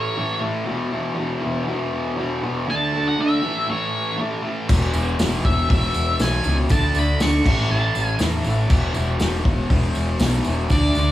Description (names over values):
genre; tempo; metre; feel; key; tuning
garage rock duo or trio; 120 BPM; 4/4; straight; unclear; A4 = 440 Hz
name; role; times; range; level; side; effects
octave-fuzz lead guitar; melody; 0.0-11.1 s; C#5 to C#6; -24 LUFS; equal; distortion
fuzz guitar; riff; 0.0-11.1 s; E2 to D4; -22 LUFS; equal; distortion
growling picked electric bass; bass; 4.7-11.1 s; E1 to E2; -22 LUFS; equal; overdrive
vintage drum kit; drums; 4.7-10.8 s; crash cymbal, hi-hat, kick drum, snare drum; -22 LUFS; equal; none
tambourine; percussion; 4.7-11.1 s; none; -36 LUFS; left 4 dB; none
room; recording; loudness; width
light reverb; small room ambience; -18 LUFS; side -14 dB against mid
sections
0.0-11.1 A section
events
none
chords
0.0 A; 0.7 E5; 2.7 D5; 3.4 A; 4.7 E5; 6.7 D5; 7.5 A5; 8.7 E5